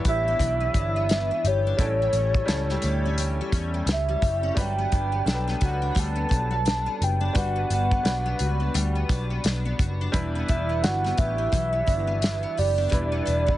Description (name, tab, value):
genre	indie pop, bedroom pop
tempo	86 BPM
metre	4/4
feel	swing 60% on 16ths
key	E dorian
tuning	A4 = 440 Hz
part	bright upright piano	accompaniment	0.0-13.6 s	F#3 to C#5	-34 LUFS	right 1 dB	none
part	picked steel-string acoustic guitar	accompaniment	0.0-13.6 s	A2 to G4	-32 LUFS	left 4 dB	analog chorus, warbly pitch drift
part	damped 70s drum kit	drums	0.0-13.6 s	hi-hat, kick drum, snare drum	-25 LUFS	equal	none
part	soft octave-layered synth lead	melody	0.1-13.6 s	C#5 to A5	-27 LUFS	right 1 dB	phaser, wide subtle chorus, digital delay
part	vintage muted picked electric bass	bass	0.1-13.6 s	E1 to E2	-26 LUFS	equal	none
room	light reverb, studio ambience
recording	heavily compressed radio sound, nothing above 10.4 kHz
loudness	-22 LUFS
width	side -14 dB against mid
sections	0.0-13.6 A section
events	none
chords	0.0 Em7; 1.8 A7; 4.6 Gmaj7; 10.1 Em7